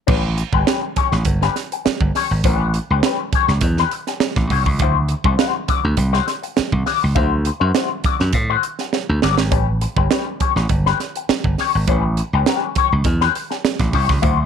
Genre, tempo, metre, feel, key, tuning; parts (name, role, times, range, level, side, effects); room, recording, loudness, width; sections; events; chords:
funk; 102 BPM; 4/4; straight; A mixolydian; A4 = 440 Hz
electric guitar with an envelope filter; accompaniment; 0.1-14.4 s; C#4 to D5; -21 LUFS; left 14 dB; wah, analog chorus
slap bass; bass; 0.1-14.5 s; G1 to A2; -18 LUFS; equal
crisp fusion drum kit; drums; 0.1-14.4 s; crash cymbal, hi-hat, kick drum, snare drum; -20 LUFS; right 4 dB
light reverb; 1960s-style stereo; -16 LUFS; side -7 dB against mid
0.1-14.5 A section
drum fill 8.9-9.5
0.1 A9; 4.8 D9; 9.5 A9